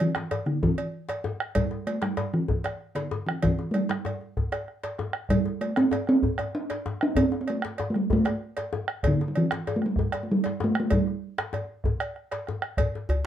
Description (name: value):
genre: west african traditional, West African drum ensemble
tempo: 128 BPM (dotted quarters)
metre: 12/8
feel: straight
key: unclear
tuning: A4 = 440 Hz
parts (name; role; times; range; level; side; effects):
- talking drum; melody; 0.0-12.5 s; D3 to D4; -25 LUFS; right 1 dB; none
- cowbell; percussion; 0.0-13.2 s; none; -33 LUFS; right 2 dB; none
- bombo; percussion; 0.1-12.9 s; none; -30 LUFS; right 1 dB; none
- djembe; percussion; 0.2-13.1 s; none; -31 LUFS; left 4 dB; none
- djembe; percussion; 13.1-13.2 s; none; -23 LUFS; left 1 dB; none
room: moderate studio reverb, RT60 0.6 s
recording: dark, warm production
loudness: -25 LUFS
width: side -10 dB against mid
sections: 0.0-12.8 A section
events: none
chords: none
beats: 0.14 0.61 1.08 | 1.55 2.02 2.48 2.95 | 3.42 3.89 4.36 4.83 | 5.29 5.76 6.23 6.70 | 7.17 7.64 8.10 8.57 | 9.04 9.51 9.97 10.44 | 10.91 11.38 11.85 12.31 | 12.78